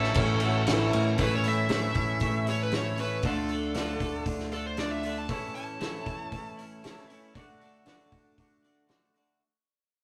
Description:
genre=indie rock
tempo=117 BPM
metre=4/4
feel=straight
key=A major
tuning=A4 = 440 Hz
part: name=smooth overdriven lead guitar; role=melody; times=0.0-7.1 s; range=A4 to A5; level=-36 LUFS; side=equal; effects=none
part: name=twangy electric guitar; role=riff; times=0.0-9.4 s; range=A2 to F#4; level=-37 LUFS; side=equal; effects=spring reverb
part: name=twelve-string electric guitar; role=riff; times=0.0-9.4 s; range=A2 to F#4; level=-38 LUFS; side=equal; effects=none
part: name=fingered electric bass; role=bass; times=0.0-5.3 s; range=A1 to A2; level=-34 LUFS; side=equal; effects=none
part: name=loose indie drum kit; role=drums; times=0.0-9.3 s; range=crash cymbal, hi-hat, kick drum, snare drum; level=-35 LUFS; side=equal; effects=none
part: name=clear French horn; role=second line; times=0.4-1.2 s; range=E4 to F#4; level=-33 LUFS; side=equal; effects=none
room=moderate small room reverb, RT60 0.5 s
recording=rough rehearsal-room recording, tube saturation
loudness=-29 LUFS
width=mono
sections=0.0-1.2 A section; 1.2-9.4 B section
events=fade-out 1.2-9.4; lead electric guitar solo 1.2-9.4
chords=0.0 A; 3.2 Dm; 5.3 A; 7.4 D

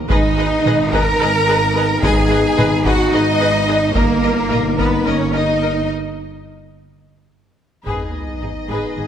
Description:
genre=cinematic, epic orchestral film score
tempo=217 BPM (eighths)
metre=7/8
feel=straight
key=G# minor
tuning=A4 = 440 Hz
part: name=warm symphonic violin section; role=melody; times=0.1-9.1 s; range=D#5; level=-30 LUFS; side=left 4 dB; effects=none
part: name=warm symphonic violin section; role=second line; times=0.1-9.1 s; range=D#4 to A#5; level=-22 LUFS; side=left 2 dB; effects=none
part: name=rich symphonic viola section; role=accompaniment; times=0.1-9.1 s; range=G#4 to B4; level=-25 LUFS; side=right 1 dB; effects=none
part: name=dark French horn section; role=sustained chords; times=0.1-9.1 s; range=A#3 to D#4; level=-22 LUFS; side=left 2 dB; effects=none
part: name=rich symphonic cello section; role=bass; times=0.1-9.1 s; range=G#2 to A#4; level=-19 LUFS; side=right 2 dB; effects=none
part: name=rich symphonic double bass section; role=bass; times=0.1-9.1 s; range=G1 to G#1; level=-22 LUFS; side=right 2 dB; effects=none
part: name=taiko ensemble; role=drums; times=0.1-8.9 s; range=none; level=-21 LUFS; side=equal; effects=none
part: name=sub drop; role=sound effects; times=7.9-9.1 s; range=none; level=-29 LUFS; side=equal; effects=none
room=moderate scoring stage reverb, RT60 1.8 s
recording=none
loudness=-14 LUFS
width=side -9 dB against mid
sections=0.0-7.9 A section; 7.9-9.1 B section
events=break 5.9-7.9; drum fill 7.0-7.9; impact 7.9-9.1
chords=0.1 G#m; 4.0 D#/G; 7.9 G#m

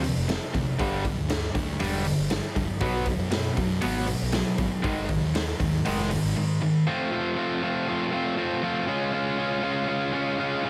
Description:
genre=quiet-loud alternative rock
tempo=119 BPM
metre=4/4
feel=straight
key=unclear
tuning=A4 = 439 Hz
part: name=twangy electric guitar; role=arpeggios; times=0.0-6.8 s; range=F2 to B3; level=-37 LUFS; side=equal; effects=lush chorus, digital delay
part: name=crunchy overdriven guitar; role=riff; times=0.0-10.7 s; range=F2 to F4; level=-29 LUFS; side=equal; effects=none
part: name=thick fuzz guitar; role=riff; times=0.0-6.8 s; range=F2 to B3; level=-34 LUFS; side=equal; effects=distortion
part: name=fuzz fingered electric bass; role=bass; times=0.0-6.3 s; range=E1 to F#2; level=-34 LUFS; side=equal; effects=overdrive
part: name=raw garage drum kit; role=drums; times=0.0-6.2 s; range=hi-hat, kick drum, snare drum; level=-32 LUFS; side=equal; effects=none
room=moderate studio reverb, RT60 0.8 s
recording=heavily compressed radio sound, multiband compression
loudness=-26 LUFS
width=mono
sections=0.0-6.9 A section; 6.9-10.7 B section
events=none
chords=0.0 F5; 0.8 G5; 2.8 B5; 4.8 Ab5; 6.9 F; 8.9 Db

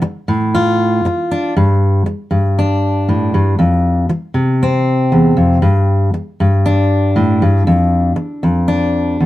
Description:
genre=folk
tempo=118 BPM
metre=4/4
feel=straight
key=unclear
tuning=A4 = 439 Hz
part: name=fingerpicked steel-string acoustic guitar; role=solo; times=0.0-9.3 s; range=E2 to F4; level=-12 LUFS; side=equal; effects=none
room=light reverb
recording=dark, warm production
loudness=-12 LUFS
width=side -15 dB against mid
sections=0.0-9.3 A section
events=none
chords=0.0 Dm; 1.6 G5; 3.6 F5; 5.6 G5; 7.7 Dm/F

